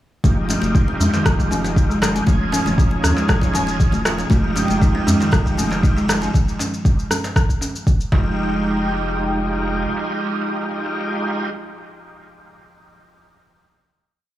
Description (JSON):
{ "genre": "afro house", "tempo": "118 BPM", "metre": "4/4", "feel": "straight", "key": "F minor", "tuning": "A4 = 440 Hz", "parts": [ { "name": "buzzing kalimba", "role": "arpeggios", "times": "0.2-8.6 s", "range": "C3 to F4", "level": "-24 LUFS", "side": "equal", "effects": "sidechain pumping, low-pass filter, dub echo" }, { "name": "overdriven tonewheel organ", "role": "stabs", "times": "0.2-11.5 s", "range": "Ab3 to Ab4", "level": "-25 LUFS", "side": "right 1 dB", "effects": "chorus vibrato, slow rotary speaker, sidechain pumping, dub echo" }, { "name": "round analog bass", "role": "bass", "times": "0.2-9.9 s", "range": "Eb1 to F2", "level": "-25 LUFS", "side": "equal", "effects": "sidechain pumping" }, { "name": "electronic kick drum", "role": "drums", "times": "0.2-8.2 s", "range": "none", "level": "-17 LUFS", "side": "equal", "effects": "small room ambience" }, { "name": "electronic shaker and rim click", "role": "drums", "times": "0.2-8.1 s", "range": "none", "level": "-25 LUFS", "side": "left 1 dB", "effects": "small room ambience" }, { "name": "congas", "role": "percussion", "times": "0.2-6.3 s", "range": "none", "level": "-26 LUFS", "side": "left 2 dB", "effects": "none" }, { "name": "djembe", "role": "percussion", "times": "0.2-8.2 s", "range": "none", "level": "-28 LUFS", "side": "right 2 dB", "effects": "none" }, { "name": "warm analog pad", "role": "sustained chords", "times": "4.3-11.5 s", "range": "Ab3 to Eb6", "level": "-26 LUFS", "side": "right 2 dB", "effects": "chorus, phaser, sidechain pumping" } ], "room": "light reverb, studio ambience", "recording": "none", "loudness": "-16 LUFS", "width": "side -14 dB against mid", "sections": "0.2-8.4 groove; 8.4-12.4 final hit", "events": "filter sweep on kalimba 0.2-6.3", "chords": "0.2 Fm9; 2.3 Eb9sus4; 4.3 Fm9; 6.3 N.C.; 8.1 Fm9" }